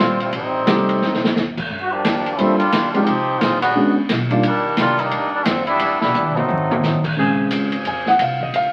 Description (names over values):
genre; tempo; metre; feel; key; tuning
jazz, big band swing; 176 BPM; 4/4; swing 63% on 8ths; unclear; A4 = 440 Hz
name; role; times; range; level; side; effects
muted trombone section; second line; 0.0-7.0 s; D3 to G4; -22 LUFS; equal; none
dark concert grand piano; accompaniment; 0.0-4.4, 7.2-8.7 s; Db3 to Ab5; -21 LUFS; equal; none
upright bass; bass; 0.0-8.7 s; G1 to Bb2; -33 LUFS; equal; none
open jazz drum kit; drums; 0.2-8.6 s; crash cymbal, hi-hat, kick drum, ride cymbal, snare drum, toms; -24 LUFS; equal; none
clear saxophone section; sustained chords; 7.2-8.1 s; Db3 to Ab4; -27 LUFS; equal; none
room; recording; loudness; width
wet studio reverb, RT60 0.8 s; very old 78 rpm record, vinyl crackle; -18 LUFS; mono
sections
0.0-7.2 A section; 7.2-8.7 B section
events
trombone section solo 0.0-7.2; drum fill 1.0-1.4, 6.1-6.8; grand piano solo 7.2-8.7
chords
0.3 Am7b5; 1.0 D5; 1.7 Gm7; 3.1 Fm7; 3.8 G#m9b5; 4.4 Ebmaj7; 5.8 Em7; 6.5 F7b9; 7.2 Bbm9